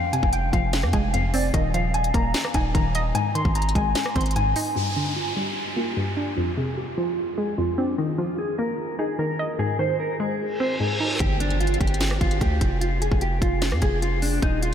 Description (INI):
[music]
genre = hip hop, trap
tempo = 149 BPM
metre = 4/4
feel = half-time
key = G phrygian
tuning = A4 = 440 Hz
[part]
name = mellow electric guitar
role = melody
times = 0.0-14.7 s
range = D4 to C6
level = -26 LUFS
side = equal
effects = lush chorus, low-pass filter, analog delay
[part]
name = hollow square pluck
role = accompaniment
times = 0.0-11.2 s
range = F2 to Eb5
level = -28 LUFS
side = left 1 dB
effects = chorus, low-pass filter
[part]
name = trap drum kit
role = drums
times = 0.1-4.7, 11.2-14.7 s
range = hi-hat, kick drum, rim click, snare drum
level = -26 LUFS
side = equal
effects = none
[part]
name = long sustained 808-style bass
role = bass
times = 0.2-4.5, 11.2-14.7 s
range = Eb1 to F2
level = -24 LUFS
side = equal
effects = none
[part]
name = downlifter, reverse cymbal and impact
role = sound effects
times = 4.8-12.8 s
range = none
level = -33 LUFS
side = equal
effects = none
[sound]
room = moderate huge ambient reverb, RT60 8.9 s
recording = dreamy mix soaked in reverb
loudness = -21 LUFS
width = side -9 dB against mid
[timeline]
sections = 0.0-4.8 A section; 4.8-11.2 B section; 11.2-14.7 C section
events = filter sweep 4.8-11.2; reverse cymbal 10.5-11.2; impact 11.2-12.8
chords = 0.0 Fm; 1.5 Ebsus2; 3.1 Ab; 4.8 Gm; 6.4 Fm; 8.0 Ebsus2; 9.6 Ab; 11.2 G5; 12.8 N.C.